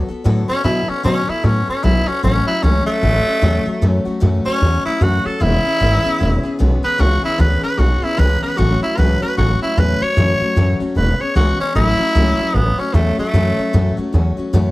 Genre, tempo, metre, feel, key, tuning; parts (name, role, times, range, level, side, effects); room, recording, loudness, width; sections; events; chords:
rockabilly; 151 BPM; 4/4; swing 61% on 8ths; A major; A4 = 439 Hz
picked steel-string acoustic guitar; accompaniment; 0.0-14.7 s; A2 to A4; -21 LUFS; left 2 dB
upright bass; bass; 0.0-14.7 s; E1 to B2; -15 LUFS; equal
growling tenor saxophone; melody; 0.5-14.0 s; A3 to C#5; -19 LUFS; equal; plate reverb
light reverb; faint mains hum; -14 LUFS; side -18 dB against mid
0.0-11.8 A section; 11.8-14.7 A section
0.0 D6; 2.2 A6; 5.4 E6; 8.6 A6; 11.0 E6; 11.8 A6